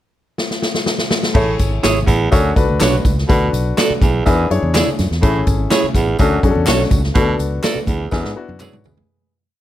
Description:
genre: uptempo 1960s-style soul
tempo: 124 BPM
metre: 4/4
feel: straight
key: A major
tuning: A4 = 440 Hz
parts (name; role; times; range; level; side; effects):
- swinging big-band drum kit; drums; 0.4-9.1 s; crash cymbal, hi-hat, kick drum, snare drum, toms; -17 LUFS; equal; none
- warm upright piano; accompaniment; 1.3-9.3 s; B3 to C#5; -20 LUFS; left 5 dB; none
- bright baritone saxophone; riff; 1.3-8.3 s; E2 to B2; -20 LUFS; right 4 dB; none
- tambourine and handclaps; percussion; 1.3-9.0 s; none; -29 LUFS; left 1 dB; none
- fingered electric bass; bass; 1.4-9.0 s; G#1 to G#2; -19 LUFS; equal; none
- congas; percussion; 1.4-9.0 s; none; -30 LUFS; right 1 dB; none
- clean electric guitar; stabs; 1.8-8.8 s; D4 to D5; -18 LUFS; right 5 dB; none
room: light reverb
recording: none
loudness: -13 LUFS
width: side -12 dB against mid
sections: 0.0-1.4 pickup bar; 1.4-9.1 verse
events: drum fill 0.4-1.4, 8.1-9.1; fade-out 7.2-9.1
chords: 0.0 N.C.; 1.4 Amaj7; 2.3 Dmaj7; 3.3 Bm7; 4.3 E7; 5.2 Amaj7; 6.2 Dmaj7; 7.2 Bm7; 8.1 E7

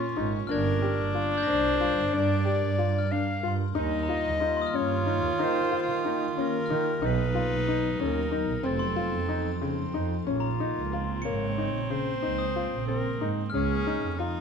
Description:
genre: contemporary instrumental, chamber music in an uneven meter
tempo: 184 BPM (eighths)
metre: 5/8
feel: straight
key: Bb minor from 10.3 s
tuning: A4 = 440 Hz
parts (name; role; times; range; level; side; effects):
- warm clarinet; melody; 0.0-14.2 s; F4 to F5; -32 LUFS; left 3 dB; none
- warm viola; second line; 0.0-14.4 s; Bb3 to F4; -31 LUFS; right 1 dB; none
- soft additive organ-like pad; sustained chords; 0.0-14.4 s; Db3 to Bb4; -36 LUFS; left 2 dB; ensemble chorus, built-in reverb
- felt-muted upright piano; arpeggios; 0.0-14.4 s; Db3 to G4; -32 LUFS; left 4 dB; none
- warm double bass; bass; 0.0-14.4 s; F1 to Eb3; -30 LUFS; right 5 dB; none
- glockenspiel with soft plastic mallets; texture; 0.0-13.8 s; Bb5 to Db7; -39 LUFS; left 8 dB; none
room: light reverb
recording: close, detailed microphones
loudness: -25 LUFS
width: side -6 dB against mid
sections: 0.0-10.3 A section; 10.3-14.4 B section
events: none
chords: 0.0 Bbm; 0.5 Gm; 3.8 Eb; 7.0 B; 8.6 F7; 10.3 Bbmadd9; 13.5 Dbadd9

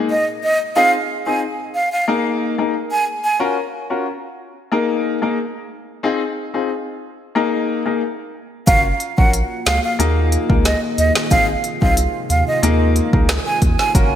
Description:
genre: dancehall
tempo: 91 BPM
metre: 4/4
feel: straight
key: unclear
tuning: A4 = 441 Hz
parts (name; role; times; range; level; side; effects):
- clear baby grand piano; accompaniment; 0.0-14.1 s; Bb3 to Bb4; -21 LUFS; left 4 dB; wide subtle chorus
- breathy mellow silver concert flute; melody; 0.1-3.4, 8.7-13.9 s; Eb5 to Ab5; -18 LUFS; right 2 dB; digital delay
- deep dark ambient pad; sustained chords; 9.1-14.2 s; C3 to Ab4; -26 LUFS; right 1 dB; chorus, built-in reverb, sidechain pumping
- warm sub bass; bass; 8.7-14.2 s; Gb1 to Eb2; -19 LUFS; equal; none
- afro-pop drum kit; drums; 8.7-14.1 s; hi-hat, kick drum, rim click, snare drum; -17 LUFS; equal; none
room: moderate lush hall reverb, RT60 2.1 s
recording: bright 1980s-style digital production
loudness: -16 LUFS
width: side -10 dB against mid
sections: 0.0-14.2 A section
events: none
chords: 0.0 Ebsus4; 0.8 Ab6; 2.1 Ebsus4; 3.4 Gbmaj7; 4.7 Ebsus4; 6.0 Ab6; 7.4 Ebsus4; 8.7 Gbmaj7; 10.0 Ebsus4; 11.3 Ab6; 12.6 Ebsus4

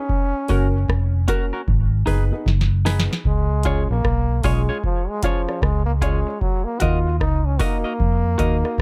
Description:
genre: roots reggae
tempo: 76 BPM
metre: 4/4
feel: swing 63% on 16ths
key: Db mixolydian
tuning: A4 = 441 Hz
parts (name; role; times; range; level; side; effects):
- bright trombone; melody; 0.0-8.8 s; F3 to F4; -28 LUFS; equal; dub echo
- booming analog drum machine; drums; 0.1-8.8 s; hi-hat, kick drum, rim click, snare drum; -24 LUFS; equal; none
- semi-hollow electric guitar; accompaniment; 0.5-8.6 s; Db4 to Eb5; -31 LUFS; equal; dub echo
- dark upright piano; stabs; 0.5-8.8 s; Bb3 to Eb5; -31 LUFS; equal; none
- vintage muted fingered electric bass; bass; 0.5-8.8 s; F1 to F2; -22 LUFS; equal; none
room: little or no reverb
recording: none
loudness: -20 LUFS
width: mono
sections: 0.0-3.3 A section; 3.3-8.8 B section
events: drum fill 2.5-3.3; trombone solo 3.3-8.8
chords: 0.1 Gb; 1.7 Abm; 3.3 Db; 6.4 Ebm

